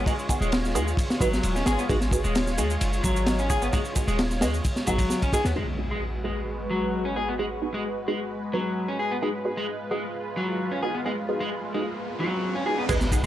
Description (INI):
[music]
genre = breakbeat, breaks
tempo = 131 BPM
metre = 4/4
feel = straight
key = G# dorian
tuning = A4 = 440 Hz
[part]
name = lush unison pad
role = sustained chords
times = 0.0-13.3 s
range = G#3 to C#5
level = -32 LUFS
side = equal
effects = chorus, phaser, sidechain pumping
[part]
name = warm 808-style bass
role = bass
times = 0.0-5.5, 12.9-13.3 s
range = D#1 to D#2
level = -27 LUFS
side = equal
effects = none
[part]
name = electric guitar at the edge of break-up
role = riff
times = 0.1-13.3 s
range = F#3 to G#4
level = -29 LUFS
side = left 1 dB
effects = low-pass filter, tape echo
[part]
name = filtered dub chord stab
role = stabs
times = 0.1-13.2 s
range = B3 to B4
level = -30 LUFS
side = right 2 dB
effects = phaser, wide subtle chorus, vintage 12-bit sampler grit, tape echo
[part]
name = crunchy breakbeat drum kit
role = drums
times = 0.1-5.6, 12.9-13.2 s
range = crash cymbal, kick drum, ride cymbal, snare drum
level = -27 LUFS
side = equal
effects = none
[part]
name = shaker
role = drums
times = 0.1-5.5, 12.9-13.3 s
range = none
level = -37 LUFS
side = right 4 dB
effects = none
[part]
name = impact and riser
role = sound effects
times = 5.6-13.3 s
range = none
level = -34 LUFS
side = equal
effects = none
[sound]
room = light reverb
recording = dry, gritty hardware recording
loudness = -24 LUFS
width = side -12 dB against mid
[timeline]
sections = 0.0-5.6 A section; 5.6-12.9 B section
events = impact 5.6-7.4, 12.9-13.3; filter sweep on synth stab 5.6-12.9; riser 10.6-12.9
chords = 0.0 G#m7